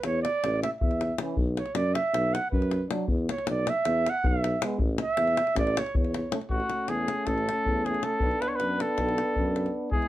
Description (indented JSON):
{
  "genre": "balkan folk, Balkan brass band",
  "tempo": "315 BPM (eighths)",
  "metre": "9/8",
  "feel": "straight",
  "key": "A major",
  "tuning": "A4 = 440 Hz",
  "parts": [
    { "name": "mellow flugelhorn", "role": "second line", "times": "0.0-6.5 s", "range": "B4 to F#5", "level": "-27 LUFS", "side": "right 3 dB", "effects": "none" },
    { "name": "warm tuba", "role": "bass", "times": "0.0-10.0 s", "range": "A1 to F#2", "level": "-30 LUFS", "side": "equal", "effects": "none" },
    { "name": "davul", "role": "percussion", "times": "0.0-10.1 s", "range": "none", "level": "-30 LUFS", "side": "left 2 dB", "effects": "none" },
    { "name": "clear euphonium", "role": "accompaniment", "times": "1.2-10.1 s", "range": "B3 to E4", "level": "-35 LUFS", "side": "left 4 dB", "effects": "none" },
    { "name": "clear euphonium", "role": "accompaniment", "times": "1.2-10.1 s", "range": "E3 to B3", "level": "-34 LUFS", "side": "right 4 dB", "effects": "none" },
    { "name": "mellow trumpet", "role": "melody", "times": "6.5-10.1 s", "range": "F#4 to C#5", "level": "-28 LUFS", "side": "equal", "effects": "none" }
  ],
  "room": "moderate studio ambience, RT60 0.5 s",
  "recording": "none",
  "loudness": "-24 LUFS",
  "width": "side -14 dB against mid",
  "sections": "0.0-6.5 A section; 6.5-10.1 B section",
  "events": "flugelhorn solo 0.0-6.5",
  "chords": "0.0 A5; 1.4 B5; 3.1 E5; 4.8 A; 8.2 Bm"
}